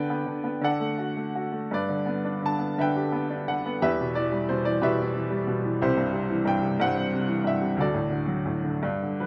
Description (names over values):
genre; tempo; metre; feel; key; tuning
classical, lyrical solo piano; 54-61 BPM (dotted quarters); 6/8; rubato; G major; A4 = 440 Hz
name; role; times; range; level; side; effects
bright upright piano; solo; 0.0-9.3 s; C2 to A5; -27 LUFS; equal; none
room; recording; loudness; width
moderate recital hall reverb, RT60 1.6 s; close, detailed microphones; -27 LUFS; mono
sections
0.0-9.3 A section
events
upright piano fill 8.8-9.3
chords
0.0 G/D; 0.6 D; 1.7 G6; 3.8 Em; 5.8 C; 7.8 D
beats
0.62 | 1.71 2.79 | 3.82 4.83 | 5.82 6.81 | 7.79 8.83